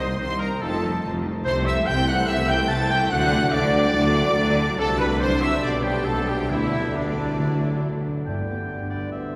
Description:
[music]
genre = classical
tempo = 142 BPM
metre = 4/4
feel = straight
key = G major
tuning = A4 = 439 Hz
[part]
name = warm symphonic violin section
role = melody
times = 0.0-9.2 s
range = G4 to A6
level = -34 LUFS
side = equal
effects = none
[part]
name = clear oboe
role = second line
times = 0.0-9.4 s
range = D4 to A5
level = -33 LUFS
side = equal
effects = none
[part]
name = flute section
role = second line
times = 0.0-9.4 s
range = D4 to A5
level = -35 LUFS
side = equal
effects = none
[part]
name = mellow clarinet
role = second line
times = 0.0-9.4 s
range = B3 to A5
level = -34 LUFS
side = equal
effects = none
[part]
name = warm symphonic violin section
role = second line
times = 0.0-9.2 s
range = D4 to A5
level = -36 LUFS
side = equal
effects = none
[part]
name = warm symphonic viola section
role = accompaniment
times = 0.0-9.2 s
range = Eb3 to F#4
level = -35 LUFS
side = equal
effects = none
[part]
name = concert harp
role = arpeggios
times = 0.0-9.4 s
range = F2 to C5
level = -35 LUFS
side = equal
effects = none
[part]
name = mellow trumpet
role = stabs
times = 0.0-9.4 s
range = D4 to A5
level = -32 LUFS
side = equal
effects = none
[part]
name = mellow tuba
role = bass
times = 0.0-9.4 s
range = F1 to D2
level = -32 LUFS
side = equal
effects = none
[part]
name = rich symphonic cello section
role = bass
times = 0.0-9.4 s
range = C2 to D3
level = -32 LUFS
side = equal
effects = none
[part]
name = warm symphonic double bass section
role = bass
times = 0.0-9.4 s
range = F1 to D2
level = -32 LUFS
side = equal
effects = none
[part]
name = mellow trombone section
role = sustained chords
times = 0.6-9.4 s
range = A2 to B3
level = -38 LUFS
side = equal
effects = none
[part]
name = warm French horn section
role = sustained chords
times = 0.6-9.4 s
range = A3 to B4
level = -35 LUFS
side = equal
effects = none
[part]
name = timpani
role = percussion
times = 6.5-8.9 s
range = G2 to D3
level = -32 LUFS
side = equal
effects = none
[part]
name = warm bassoon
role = accompaniment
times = 8.3-9.4 s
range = D3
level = -39 LUFS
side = equal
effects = none
[sound]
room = wet cathedral reverb, RT60 6.6 s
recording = recorded in a church or concert hall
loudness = -22 LUFS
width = mono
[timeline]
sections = 0.0-8.3 A section; 8.3-9.4 B section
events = none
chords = 0.0 Cm; 0.6 F7; 1.5 Am/C; 3.1 D; 4.8 D7/C; 5.6 G/B; 6.5 G/D; 7.4 D; 8.3 G

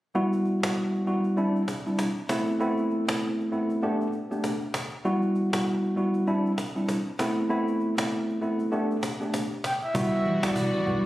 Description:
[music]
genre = afrobeats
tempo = 98 BPM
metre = 4/4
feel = swing 58% on 16ths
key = E minor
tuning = A4 = 439 Hz
[part]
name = tine electric piano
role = accompaniment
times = 0.1-11.1 s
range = G3 to G4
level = -25 LUFS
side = equal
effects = none
[part]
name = cajon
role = drums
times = 0.1-11.0 s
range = none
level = -32 LUFS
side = equal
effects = none
[part]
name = breathy flute-like synth lead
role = melody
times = 9.6-11.1 s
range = D5 to G5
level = -28 LUFS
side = right 1 dB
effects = chorus
[part]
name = warm studio string section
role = sustained chords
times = 9.9-11.1 s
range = E3 to F#4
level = -33 LUFS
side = left 1 dB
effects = none
[part]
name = punchy sub bass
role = bass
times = 9.9-11.1 s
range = E1 to B1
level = -36 LUFS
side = equal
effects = none
[part]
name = congas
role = percussion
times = 10.3-11.0 s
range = none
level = -31 LUFS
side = equal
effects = none
[sound]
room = moderate lush hall reverb, RT60 1.8 s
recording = recorded on a phone in the room, studio reverb, compression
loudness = -24 LUFS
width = side -16 dB against mid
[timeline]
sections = 0.2-9.9 A section; 9.9-11.1 B section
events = none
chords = 0.2 Emadd9; 1.4 Cadd9; 2.3 Amadd9; 3.8 Gadd9; 5.0 Emadd9; 6.3 Cadd9; 7.2 Amadd9; 8.7 Gadd9; 9.9 Emadd9

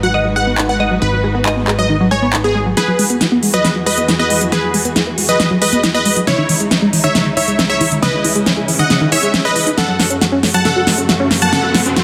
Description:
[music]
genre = uplifting trance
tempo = 137 BPM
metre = 4/4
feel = straight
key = E major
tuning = A4 = 440 Hz
[part]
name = supersaw stab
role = melody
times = 0.0-11.8 s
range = E4 to A5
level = -20 LUFS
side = equal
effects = cassette tape, tape echo
[part]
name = glassy wavetable pluck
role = second line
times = 0.0-2.7 s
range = D#5 to G#5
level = -26 LUFS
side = equal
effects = chorus, delay
[part]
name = dark symphonic string section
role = sustained chords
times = 0.0-12.0 s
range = C#2 to B4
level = -25 LUFS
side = equal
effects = none
[part]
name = tight sequenced synth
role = arpeggios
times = 0.0-12.0 s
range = C#3 to F#4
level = -20 LUFS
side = equal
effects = chorus, phaser, cassette tape, tape echo
[part]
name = plucky analog bass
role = bass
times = 0.0-2.7 s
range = G#1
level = -23 LUFS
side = equal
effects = tube saturation
[part]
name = big-room dance drum kit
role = drums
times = 0.6-12.0 s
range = handclaps, hi-hat, snare drum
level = -19 LUFS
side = equal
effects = soft clipping on snare, studio reverb
[part]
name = riser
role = sound effects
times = 10.8-12.0 s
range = none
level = -27 LUFS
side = equal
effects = none
[sound]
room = moderate lush hall reverb, RT60 1.9 s, digital ambience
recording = dense, heavily limited modern master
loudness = -14 LUFS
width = mono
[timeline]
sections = 0.0-2.8 A section; 2.8-12.0 B section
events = filter sweep on synth arpeggio sound 0.0-2.8, 2.8-12.0; build-up 2.8-12.0; drum fill 2.8-12.0; riser 10.8-12.0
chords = 0.0 G#m7; 2.8 Eadd9; 6.3 C#madd9; 9.8 F#m

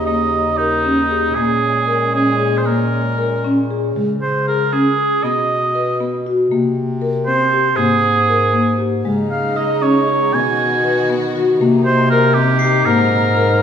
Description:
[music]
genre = contemporary instrumental, chamber music in an uneven meter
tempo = 235 BPM (eighths)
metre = 5/8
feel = straight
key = unclear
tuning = A4 = 440 Hz
[part]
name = warm oboe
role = melody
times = 0.0-13.6 s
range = Eb4 to Ab5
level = -17 LUFS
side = right 3 dB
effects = none
[part]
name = dark chamber string section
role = sustained chords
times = 0.0-3.9, 9.1-13.6 s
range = Bb2 to F#4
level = -24 LUFS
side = left 1 dB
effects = none
[part]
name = warm bass clarinet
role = bass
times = 0.0-13.6 s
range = Eb2 to Db3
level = -21 LUFS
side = equal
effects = none
[part]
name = marimba with medium mallets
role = arpeggios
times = 0.1-13.6 s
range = Ab3 to B4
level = -18 LUFS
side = left 2 dB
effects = none
[part]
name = glockenspiel with soft plastic mallets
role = texture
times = 9.6-10.6, 12.6-13.1 s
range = Bb6 to C7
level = -25 LUFS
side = right 6 dB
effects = none
[sound]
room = wet recital hall reverb, RT60 1.5 s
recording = recorded in a church or concert hall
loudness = -14 LUFS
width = side -8 dB against mid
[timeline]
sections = 0.0-4.0 A section; 4.0-13.6 B section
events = none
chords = 0.0 Eb7; 1.4 Bbm7; 4.0 Db5; 5.2 B; 6.5 C5; 7.8 Absus2; 9.1 Dbsus2; 10.3 B; 11.6 Cm7; 12.9 Absus2

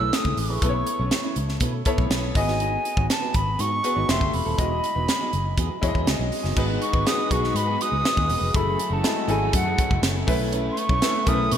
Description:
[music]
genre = polished 1980s jazz-funk pop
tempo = 121 BPM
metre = 4/4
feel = straight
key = unclear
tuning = A4 = 440 Hz
[part]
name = concert flute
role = melody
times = 0.0-11.6 s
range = F#5 to E6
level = -26 LUFS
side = right 1 dB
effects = none
[part]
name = clear grand piano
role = accompaniment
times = 0.0-11.6 s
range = G#3 to E5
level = -28 LUFS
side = left 2 dB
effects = lush chorus
[part]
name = electric guitar at the edge of break-up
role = riff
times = 0.0-11.6 s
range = E3 to C#5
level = -33 LUFS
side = right 4 dB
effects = analog chorus
[part]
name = vintage muted fingered electric bass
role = bass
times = 0.0-11.6 s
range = D#1 to B2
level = -26 LUFS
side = equal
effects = none
[part]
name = crisp fusion drum kit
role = drums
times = 0.1-11.6 s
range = crash cymbal, hi-hat, kick drum, snare drum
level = -25 LUFS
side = equal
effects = gated reverb
[part]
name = rich studio string section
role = sustained chords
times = 6.6-11.6 s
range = F#3 to B4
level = -34 LUFS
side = equal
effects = none
[sound]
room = moderate lush hall reverb, RT60 2.6 s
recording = bright 1980s-style digital production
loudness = -20 LUFS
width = side -9 dB against mid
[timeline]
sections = 0.0-6.6 A section; 6.6-11.6 B section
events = none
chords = 0.0 F#m11 (rootless); 0.6 B9sus4; 2.4 G#m7; 4.1 Fmaj9; 4.6 Emaj9; 6.6 G#m7; 8.5 F#m9; 10.3 B9sus4

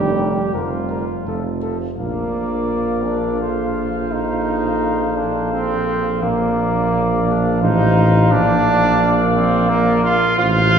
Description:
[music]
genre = classical, brass quintet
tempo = 86 BPM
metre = 3/4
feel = straight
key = Bb major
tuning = A4 = 440 Hz
[part]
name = clear flugelhorn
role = second line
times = 0.0-10.8 s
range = F4 to D5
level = -27 LUFS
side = right 1 dB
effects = none
[part]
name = mellow French horn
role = accompaniment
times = 0.0-10.8 s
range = F3 to C5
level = -25 LUFS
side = left 1 dB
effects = none
[part]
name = mellow tuba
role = bass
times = 0.0-10.8 s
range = F1 to Bb1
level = -19 LUFS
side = right 2 dB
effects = none
[part]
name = dark trumpet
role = melody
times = 0.2-10.8 s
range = A4 to F5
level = -25 LUFS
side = left 4 dB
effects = none
[part]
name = brilliant trombone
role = accompaniment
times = 0.2-10.8 s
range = D3 to F4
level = -21 LUFS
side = right 2 dB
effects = none
[sound]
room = wet concert hall reverb, RT60 2.5 s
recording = heard from further back in the room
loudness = -15 LUFS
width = side -7 dB against mid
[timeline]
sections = 0.0-2.0 A section; 2.0-10.8 B section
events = none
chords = 0.0 Bb/F; 1.3 F; 2.0 Bb; 3.4 F/Bb; 6.2 Bb; 7.6 F7/A; 8.3 Bb

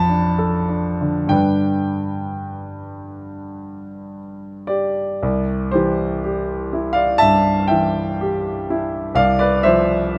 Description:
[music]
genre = classical, romantic nocturne for solo piano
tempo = 57-68 BPM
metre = 4/4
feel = rubato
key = C major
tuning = A4 = 440 Hz
[part]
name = warm grand piano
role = solo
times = 0.0-10.2 s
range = C2 to B5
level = -20 LUFS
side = equal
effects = none
[sound]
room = light reverb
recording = close, detailed microphones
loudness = -19 LUFS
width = mono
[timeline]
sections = 0.0-5.2 A section; 5.2-10.2 B section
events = none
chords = 0.0 Dm/F; 1.3 G; 5.2 C; 9.2 Dm7/C

